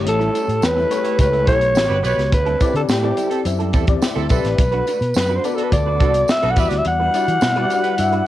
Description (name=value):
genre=polished 1980s jazz-funk pop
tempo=106 BPM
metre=4/4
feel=straight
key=E minor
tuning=A4 = 438 Hz
part: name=clear horn section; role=second line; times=0.0-8.0 s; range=B3 to C#5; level=-31 LUFS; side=right 8 dB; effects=cassette tape
part: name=FM electric piano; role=accompaniment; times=0.0-8.3 s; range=G3 to E5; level=-24 LUFS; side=left 7 dB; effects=ensemble chorus, cassette tape
part: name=fingered electric bass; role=bass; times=0.0-8.2 s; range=G1 to E3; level=-22 LUFS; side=equal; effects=none
part: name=breathy alto saxophone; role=melody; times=0.1-8.3 s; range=G4 to F#5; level=-19 LUFS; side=equal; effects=cassette tape
part: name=clean electric guitar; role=riff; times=0.1-8.2 s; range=G3 to B4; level=-29 LUFS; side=right 9 dB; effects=ensemble chorus, cassette tape
part: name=crisp fusion drum kit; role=drums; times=0.1-8.3 s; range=hi-hat, kick drum, snare drum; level=-20 LUFS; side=equal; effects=cassette tape
part: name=tambourine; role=percussion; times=0.3-8.1 s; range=none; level=-38 LUFS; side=right 10 dB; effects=none
room=moderate spring reverb, RT60 2.2 s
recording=home recording on cassette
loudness=-15 LUFS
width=side -14 dB against mid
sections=0.0-8.3 A section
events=none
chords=0.0 A7; 1.8 A13; 2.3 D9sus4; 4.6 Bm7; 6.6 Em9